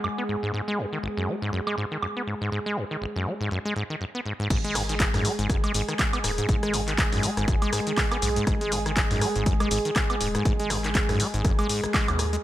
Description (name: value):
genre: acid house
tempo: 121 BPM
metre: 4/4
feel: swing 57% on 16ths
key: G# minor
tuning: A4 = 440 Hz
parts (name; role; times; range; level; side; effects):
- warm analog pad; sustained chords; 0.0-12.4 s; G#3 to G#4; -30 LUFS; right 1 dB; chorus, sidechain pumping
- acid bass, saw; riff; 0.0-12.4 s; G#1 to B3; -29 LUFS; equal; sidechain pumping, dub echo
- punchy analog drum machine; drums; 0.0-12.4 s; crash cymbal, handclaps, hi-hat, rim click, shaker, woodblock; -28 LUFS; equal; none
- warbly tape-like pad; texture; 0.0-3.5 s; B3 to F#5; -47 LUFS; equal; none
- round analog bass; bass; 4.5-12.4 s; D#1 to G#2; -31 LUFS; equal; sidechain pumping
- electronic kick drum; drums; 4.5-12.1 s; none; -26 LUFS; equal; none
room: light reverb, digital ambience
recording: none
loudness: -23 LUFS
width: side -14 dB against mid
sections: 0.0-4.5 A section; 4.5-12.4 B section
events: drop 4.5-12.4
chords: 0.0 G#m7; 4.5 G#7(no3)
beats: 0.04 | 0.54 1.03 1.53 2.02 | 2.52 3.02 3.51 4.01 | 4.50 5.00 5.50 5.99 | 6.49 6.98 7.48 7.97 | 8.47 8.97 9.46 9.96 | 10.46 10.95 11.45 11.94